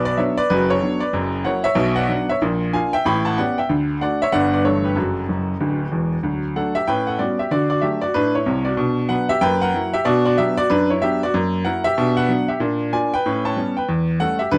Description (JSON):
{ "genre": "jazz, stride piano", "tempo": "188 BPM", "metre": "4/4", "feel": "swing 63% on 8ths", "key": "D major", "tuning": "A4 = 440 Hz", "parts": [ { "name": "clear upright piano", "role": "solo", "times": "0.0-14.6 s", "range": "D1 to B5", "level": "-20 LUFS", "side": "equal", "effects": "none" } ], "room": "moderate studio reverb, RT60 0.6 s", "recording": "dark, warm production", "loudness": "-20 LUFS", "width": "mono", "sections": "0.0-6.2 A section; 6.2-14.6 A section", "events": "upright piano fill 5.3-6.2", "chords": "0.0 Bm; 1.1 F#7; 1.8 Bm; 2.4 Bb; 3.0 A9; 3.7 D; 4.3 Gmaj7; 4.6 A7/G; 5.0 D/F#; 6.2 D; 6.9 A9; 7.5 D; 8.8 Bm; 9.4 F#7; 10.1 Bm; 11.3 F#7; 12.0 Bm; 12.6 Bb; 13.2 A9; 13.9 A7/E", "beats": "0.18 0.50 0.81 | 1.13 1.45 1.77 2.09 | 2.41 2.73 3.05 3.37 | 3.69 4.01 4.33 4.64 | 4.96 5.28 5.60 5.92 | 6.24 6.56 6.88 7.19 | 7.51 7.83 8.15 8.47 | 8.79 9.10 9.42 9.74 | 10.06 10.38 10.70 11.01 | 11.33 11.65 11.97 12.28 | 12.60 12.92 13.24 13.55 | 13.87 14.19 14.51" }